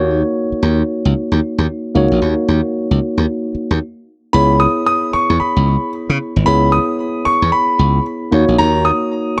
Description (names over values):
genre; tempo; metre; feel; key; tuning
R&B, new jack swing; 113 BPM; 4/4; swing 61% on 16ths; C# dorian; A4 = 440 Hz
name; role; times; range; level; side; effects
tine electric piano; accompaniment; 0.0-9.4 s; A#3 to C#5; -20 LUFS; equal; none
glassy slap bass; bass; 0.0-8.9 s; G#1 to C#3; -17 LUFS; equal; none
warm concert grand piano; melody; 4.3-9.4 s; A#5 to D#6; -18 LUFS; equal; digital delay
room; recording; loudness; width
moderate echo chamber reverb, RT60 1.4 s, small room ambience; none; -16 LUFS; mono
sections
0.0-4.3 A section; 4.3-9.4 B section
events
stop 3.8-4.3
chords
0.0 D#m7; 4.3 C#m7; 8.3 D#m7